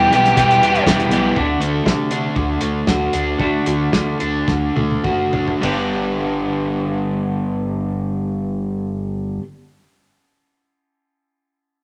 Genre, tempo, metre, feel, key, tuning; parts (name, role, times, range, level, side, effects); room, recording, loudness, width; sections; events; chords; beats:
indie rock; 101-121 BPM; 4/4; straight; G major; A4 = 440 Hz
octave-fuzz lead guitar; melody; 0.0-0.8 s; G4; -16 LUFS; equal; distortion
bright tonewheel organ; sustained chords; 0.0-1.3 s; G4 to B5; -34 LUFS; equal
clean electric guitar; riff; 0.0-9.4 s; E2 to G4; -26 LUFS; equal
overdriven electric guitar; riff; 0.0-9.4 s; G2 to F#4; -22 LUFS; equal
chorused synth bass; bass; 0.0-9.4 s; E1 to C3; -28 LUFS; equal
cloth-damped thuddy drum kit; drums; 0.1-5.8 s; hi-hat, kick drum, ride cymbal, snare drum, toms; -24 LUFS; equal
moderate large studio reverb, RT60 1.0 s; -19 LUFS; mono
0.0-1.4 A section; 1.4-5.6 B section; 5.6-10.4 C section
slowing down 1.4-5.6; drum fill 4.5-5.6
0.0 Em; 1.4 D; 5.6 G
0.37 0.87 | 1.36 1.86 2.36 2.88 | 3.40 3.93 4.47 5.04 | 5.62 6.21 6.80 7.39 | 7.98 8.57 9.17